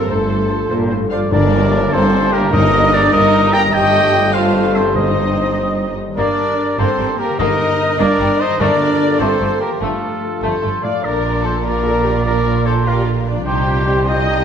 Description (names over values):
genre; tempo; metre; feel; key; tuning
cinematic, heroic adventure film score; 99 BPM (dotted quarters); 6/8; straight; Bb major from 11.0 s; A4 = 441 Hz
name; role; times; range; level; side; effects
rich symphonic violin section; melody; 0.0-14.4 s; G3 to Eb5; -24 LUFS; left 4 dB; none
hollow concert flute; second line; 0.0-0.7 s; A4; -28 LUFS; equal; none
warm oboe; second line; 0.0-14.4 s; A4 to Bb5; -20 LUFS; right 1 dB; none
warm symphonic violin section; second line; 0.0-14.4 s; D4 to Bb5; -23 LUFS; left 5 dB; none
dark French horn section; sustained chords; 0.0-0.7, 11.4-14.0 s; F3 to Eb4; -29 LUFS; left 3 dB; none
concert harp; arpeggios; 0.0-14.4 s; G2 to D6; -25 LUFS; left 6 dB; none
rich symphonic cello section; bass; 0.0-14.4 s; F2 to C3; -21 LUFS; right 3 dB; none
rich symphonic double bass section; bass; 0.0-14.4 s; G1 to C2; -22 LUFS; right 3 dB; none
warm symphonic viola section; accompaniment; 0.1-14.4 s; A3 to C5; -24 LUFS; right 1 dB; none
clear trumpet; stabs; 1.1-14.4 s; F4 to G5; -20 LUFS; right 1 dB; none
tam-tam; percussion; 1.3-2.9 s; none; -26 LUFS; left 3 dB; none
timpani; percussion; 1.3-9.2 s; G2; -24 LUFS; equal; none
room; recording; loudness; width
wet scoring stage reverb, RT60 1.9 s; none; -13 LUFS; side -8 dB against mid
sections
0.0-1.3 A section; 1.3-11.0 A section; 11.0-14.4 B section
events
band accent 1.3-1.7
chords
0.0 F/G; 1.3 Gm; 2.5 Eb/G; 3.7 F/G; 4.9 Cm/G; 6.2 Gm; 7.4 Eb/G; 8.6 F/G; 11.0 Bb; 13.5 Cmadd9